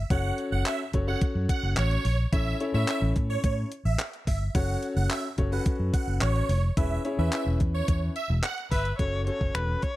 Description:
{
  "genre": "dance-pop",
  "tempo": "108 BPM",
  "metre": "4/4",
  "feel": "straight",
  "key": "F# minor",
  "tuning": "A4 = 440 Hz",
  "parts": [
    { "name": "vintage muted fingered electric bass", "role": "bass", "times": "0.0-9.7 s", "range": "E1 to A2", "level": "-27 LUFS", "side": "equal", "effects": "sidechain pumping" },
    { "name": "supersaw chords", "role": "melody", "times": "0.1-8.8 s", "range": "C#5 to F#5", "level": "-33 LUFS", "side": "right 4 dB", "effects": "phaser, sidechain pumping, slapback echo" },
    { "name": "clear baby grand piano", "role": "accompaniment", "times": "0.1-9.9 s", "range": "C#4 to C#5", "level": "-32 LUFS", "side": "left 3 dB", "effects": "sidechain pumping" },
    { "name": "gated 80s digital drum machine", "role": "drums", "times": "0.1-10.0 s", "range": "finger snaps, handclaps, hi-hat, kick drum", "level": "-28 LUFS", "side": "equal", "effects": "gated reverb" },
    { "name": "warm erhu", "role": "melody", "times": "8.7-10.0 s", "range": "B4 to C#5", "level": "-31 LUFS", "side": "left 2 dB", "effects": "slapback echo" }
  ],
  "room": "little or no reverb",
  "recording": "dry, close 1970s-style studio recording",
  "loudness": "-24 LUFS",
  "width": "side -16 dB against mid",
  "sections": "0.0-9.0 A section",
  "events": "drop 0.0-9.0",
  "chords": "0.1 F#m; 2.3 A; 4.5 F#m; 6.8 C#m7/E; 9.0 F#m",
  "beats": "| 0.10 0.66 1.22 1.77 | 2.33 2.88 3.44 3.99 | 4.55 5.10 5.66 6.21 | 6.77 7.33 7.88 8.44 | 8.99 9.55"
}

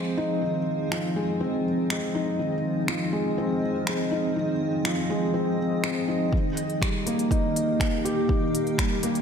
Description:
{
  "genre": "piano and strings electronica",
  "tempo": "122 BPM",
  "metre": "4/4",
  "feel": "straight",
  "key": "F minor",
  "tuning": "A4 = 440 Hz",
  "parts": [
    { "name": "granular cloud pad", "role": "sustained chords", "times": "0.0-9.2 s", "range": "Eb3 to Eb5", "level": "-30 LUFS", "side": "right 1 dB", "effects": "built-in reverb, sidechain pumping" },
    { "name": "felt-muted upright piano", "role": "riff", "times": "0.0-9.2 s", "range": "Eb3 to G4", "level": "-25 LUFS", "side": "left 1 dB", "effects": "ping-pong delay" },
    { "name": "deep house drum kit", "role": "drums", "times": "0.9-9.2 s", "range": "finger snaps, hi-hat", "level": "-32 LUFS", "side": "equal", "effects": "none" },
    { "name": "electronic kick drum", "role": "drums", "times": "6.3-8.9 s", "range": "none", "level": "-26 LUFS", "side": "equal", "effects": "none" }
  ],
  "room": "moderate lush hall reverb, RT60 1.9 s, digital ambience",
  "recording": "none",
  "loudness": "-23 LUFS",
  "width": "side -7 dB against mid",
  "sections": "0.0-9.2 A section",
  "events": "build-up 0.0-9.2",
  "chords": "0.0 Fm7; 6.3 Eb",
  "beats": "| 0.43 0.92 1.41 1.90 | 2.39 2.88 3.38 3.87 | 4.36 4.85 5.34 5.84 | 6.33 6.82 7.31 7.80 | 8.29 8.79"
}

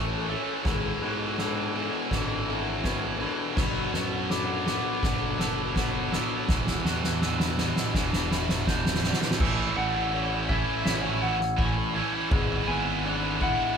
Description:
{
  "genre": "post-rock",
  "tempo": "82 BPM",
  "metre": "4/4",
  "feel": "straight",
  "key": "A major",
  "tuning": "A4 = 440 Hz",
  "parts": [
    { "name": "electric guitar through a small old amp", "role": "arpeggios", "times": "0.0-13.8 s", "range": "E2 to A4", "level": "-35 LUFS", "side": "left 4 dB", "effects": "spring reverb" },
    { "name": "glockenspiel with soft plastic mallets", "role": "arpeggios", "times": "0.0-13.8 s", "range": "D6 to G#6", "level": "-38 LUFS", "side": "right 2 dB", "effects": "none" },
    { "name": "tight distorted guitar", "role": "riff", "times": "0.0-13.8 s", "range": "E2 to E4", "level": "-29 LUFS", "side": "right 1 dB", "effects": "distortion" },
    { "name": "overdriven picked electric bass", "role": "bass", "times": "0.0-13.5 s", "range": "E1 to G#2", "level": "-33 LUFS", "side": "equal", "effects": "none" },
    { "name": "soft-mallet drum kit", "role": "drums", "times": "0.3-13.6 s", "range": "crash cymbal, kick drum, ride cymbal, snare drum", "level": "-29 LUFS", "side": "equal", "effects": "none" },
    { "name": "clean lap steel guitar", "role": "melody", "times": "9.8-13.8 s", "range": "E5 to G#5", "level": "-30 LUFS", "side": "left 1 dB", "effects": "none" }
  ],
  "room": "moderate studio reverb, RT60 0.6 s",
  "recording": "band playing live in one room",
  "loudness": "-24 LUFS",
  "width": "side -7 dB against mid",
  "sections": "0.0-9.4 A section; 9.4-13.8 B section",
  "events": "build-up 0.0-9.4; drum fill 0.0-9.4",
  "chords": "0.0 A; 0.7 E7/G#; 3.6 Bm7/F#; 6.5 Em7; 9.4 Amaj7; 12.3 E7/G#",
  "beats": "| 0.66 1.38 2.11 2.84 | 3.57 4.30 5.03 5.76 | 6.49 7.22 7.95 8.67 | 9.40 10.13 10.86 11.59 | 12.32 13.05"
}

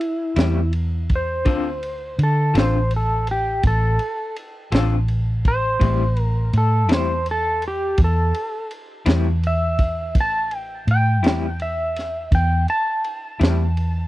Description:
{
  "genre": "slow blues",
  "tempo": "55 BPM (dotted quarters)",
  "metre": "12/8",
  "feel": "straight",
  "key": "A minor",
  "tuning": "A4 = 440 Hz",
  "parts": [
    { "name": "clean lap steel guitar", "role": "melody", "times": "0.0-14.1 s", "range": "E4 to A5", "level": "-23 LUFS", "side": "equal", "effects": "none" },
    { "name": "crunchy breakbeat drum kit", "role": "drums", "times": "0.0-13.9 s", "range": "kick drum, ride cymbal, snare drum", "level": "-19 LUFS", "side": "equal", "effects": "none" },
    { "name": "electric guitar through a small old amp", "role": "accompaniment", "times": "0.4-13.6 s", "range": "A2 to A4", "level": "-24 LUFS", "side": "left 5 dB", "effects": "tremolo" },
    { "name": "vintage muted fingered electric bass", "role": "bass", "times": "0.4-14.1 s", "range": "A1 to D3", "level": "-20 LUFS", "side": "equal", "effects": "none" }
  ],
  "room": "little or no reverb",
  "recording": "dry, close 1970s-style studio recording",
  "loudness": "-18 LUFS",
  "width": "side -17 dB against mid",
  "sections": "0.0-14.1 A section",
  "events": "electric slide guitar solo 0.0-14.1",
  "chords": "0.0 Am7; 1.5 Dm7; 5.8 Am7",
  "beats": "0.38 | 1.46 2.55 3.64 4.72 | 5.81 6.89 7.98 9.06 | 10.15 11.23 12.32 13.40"
}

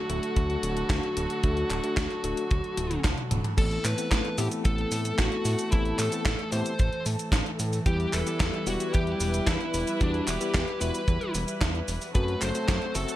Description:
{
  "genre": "italo disco",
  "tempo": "112 BPM",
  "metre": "4/4",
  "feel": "straight",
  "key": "unclear",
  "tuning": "A4 = 440 Hz",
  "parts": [
    { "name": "fuzz lead guitar", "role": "melody", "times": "0.0-13.2 s", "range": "D4 to C5", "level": "-32 LUFS", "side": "equal", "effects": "distortion, digital delay" },
    { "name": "dark studio string section", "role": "sustained chords", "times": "0.0-13.2 s", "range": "C3 to B4", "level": "-33 LUFS", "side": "equal", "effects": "none" },
    { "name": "mellow tine electric piano", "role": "stabs", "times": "0.0-13.2 s", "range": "G3 to A4", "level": "-35 LUFS", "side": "left 4 dB", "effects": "fast stereo tremolo" },
    { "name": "fat analog bass", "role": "bass", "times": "0.1-13.1 s", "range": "D1 to A2", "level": "-31 LUFS", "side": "equal", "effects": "none" },
    { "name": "gated 80s digital drum machine", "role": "drums", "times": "0.1-13.2 s", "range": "cabasa, crash cymbal, handclaps, hi-hat, snare drum, toms", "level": "-32 LUFS", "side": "equal", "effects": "gated reverb, gated reverb snare, studio reverb" },
    { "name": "kick drum", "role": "drums", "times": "0.4-12.8 s", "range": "none", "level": "-26 LUFS", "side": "equal", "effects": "studio reverb" }
  ],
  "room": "small room ambience",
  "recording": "none",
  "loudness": "-25 LUFS",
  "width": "side -14 dB against mid",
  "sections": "0.0-3.6 A section; 3.6-13.2 B section",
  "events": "drum fill 2.8-3.6",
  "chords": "0.0 D; 3.6 Amadd9; 7.9 Em; 12.1 F#dim",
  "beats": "0.36 0.90 | 1.44 1.97 2.51 3.04 | 3.58 4.11 4.65 5.18 | 5.72 6.26 6.79 7.33 | 7.86 8.40 8.94 9.47 | 10.01 10.54 11.08 11.61 | 12.15 12.69"
}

